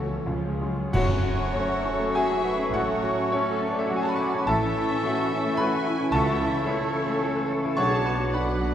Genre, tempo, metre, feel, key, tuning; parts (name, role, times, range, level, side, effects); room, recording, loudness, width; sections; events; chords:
classical, romantic movement for piano and orchestra; 85-113 BPM; 3/4; rubato; F# minor; A4 = 440 Hz
clear grand piano; melody; 0.0-8.7 s; B1 to D6; -27 LUFS; left 1 dB
muted chamber violin section; melody; 0.0-8.7 s; barely audible
muted chamber violin section; second line; 0.0-8.7 s; A4 to B5; -36 LUFS; left 1 dB
muted symphonic viola section; accompaniment; 0.0-8.7 s; D3 to A4; -37 LUFS; left 1 dB
muted chamber cello section; bass; 0.0-8.7 s; E3 to B4; -32 LUFS; right 2 dB
muted chamber double bass section; bass; 0.0-8.7 s; F#1 to C#2; -32 LUFS; right 2 dB
large flute ensemble; second line; 0.9-8.7 s; C#6 to D6; -34 LUFS; left 3 dB
warm French horn section; sustained chords; 0.9-8.7 s; A3 to D4; -33 LUFS; left 2 dB
clash cymbals and concert bass drum; percussion; 0.9-2.1 s; -32 LUFS; right 1 dB
timpani; percussion; 0.9-1.8 s; F#2; -31 LUFS; right 1 dB
clear oboe; second line; 1.0-8.7 s; C#4 to D5; -35 LUFS; right 1 dB
warm bassoon; accompaniment; 1.0-8.7 s; A3 to B3; -34 LUFS; right 2 dB
warm trombone section; sustained chords; 1.0-8.7 s; F#2 to F#3; -34 LUFS; right 2 dB
wet scoring stage reverb, RT60 1.8 s; heard from further back in the room; -22 LUFS; side -10 dB against mid
0.9-8.7 A section
band accent 0.9-1.5
0.3 C#; 0.9 F#m; 2.7 F#m/A; 4.5 A; 6.1 A/C#; 7.8 Bm